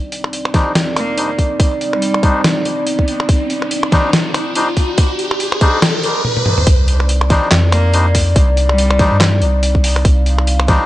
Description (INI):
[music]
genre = deep dubstep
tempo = 142 BPM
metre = 4/4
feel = swing 58% on 16ths, half-time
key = C minor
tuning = A4 = 439 Hz
[part]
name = dark analog pad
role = sustained chords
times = 0.0-10.9 s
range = C4 to F5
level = -21 LUFS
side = equal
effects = chorus
[part]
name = soft dub sub bass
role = bass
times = 0.0-10.8 s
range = Bb1 to G2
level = -16 LUFS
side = equal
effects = tube saturation, high-pass filter
[part]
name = riser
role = sound effects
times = 1.5-6.7 s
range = none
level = -22 LUFS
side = equal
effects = none
[part]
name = trip hop sampler-style drum kit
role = drums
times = 0.1-10.8 s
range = finger snaps, handclaps, hi-hat, snare drum, toms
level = -18 LUFS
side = equal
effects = none
[part]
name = melodica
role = stabs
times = 0.5-10.9 s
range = G3 to C5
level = -21 LUFS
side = left 2 dB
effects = low-pass filter, dub echo
[part]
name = electronic kick drum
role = drums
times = 0.5-10.8 s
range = none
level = -13 LUFS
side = equal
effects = none
[part]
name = rich cello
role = melody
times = 1.0-2.5, 7.7-9.3 s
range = G3 to Bb3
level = -24 LUFS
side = equal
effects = dub echo
[sound]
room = little or no reverb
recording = dry, gritty hardware recording, nothing above 10.3 kHz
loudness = -12 LUFS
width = side -16 dB against mid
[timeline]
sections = 0.0-6.7 A section; 6.7-10.9 B section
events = build-up 0.0-6.7; filter sweep on melodica 0.0-6.7; riser 1.5-6.7; drum fill 6.2-6.7; drop 6.7-10.9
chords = 0.0 Cmadd9